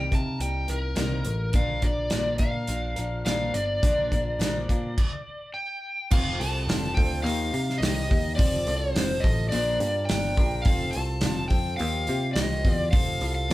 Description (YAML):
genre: folk rock and heartland rock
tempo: 105 BPM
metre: 4/4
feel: straight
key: unclear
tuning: A4 = 444 Hz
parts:
  - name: overdriven slide guitar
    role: melody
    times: 0.0-13.5 s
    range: Bb4 to A5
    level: -30 LUFS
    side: equal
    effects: none
  - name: picked steel-string acoustic guitar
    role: accompaniment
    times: 0.0-13.5 s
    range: Bb2 to Bb4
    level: -32 LUFS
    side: left 2 dB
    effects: none
  - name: picked electric bass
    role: bass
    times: 0.0-13.5 s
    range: F1 to C3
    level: -29 LUFS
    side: equal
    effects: none
  - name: natural country drum kit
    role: drums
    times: 0.1-13.5 s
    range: crash cymbal, hi-hat, kick drum, snare drum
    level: -25 LUFS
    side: equal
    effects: none
room: moderate large studio reverb, RT60 0.8 s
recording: band playing live in one room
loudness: -23 LUFS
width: side -17 dB against mid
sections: 0.0-6.1 A section; 6.1-13.5 B section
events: stop 5.0-6.1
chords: 0.0 Cm7; 1.5 Bb; 6.1 F; 7.2 Ebadd9; 8.4 F; 9.5 Bb; 10.7 F; 11.8 Ebadd9; 12.9 F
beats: 0.40 0.97 | 1.54 2.12 2.69 3.26 | 3.83 4.40 4.97 5.54 | 6.11 6.68 7.25 7.82 | 8.39 8.96 9.52 10.09 | 10.66 11.23 11.80 12.37 | 12.93 13.50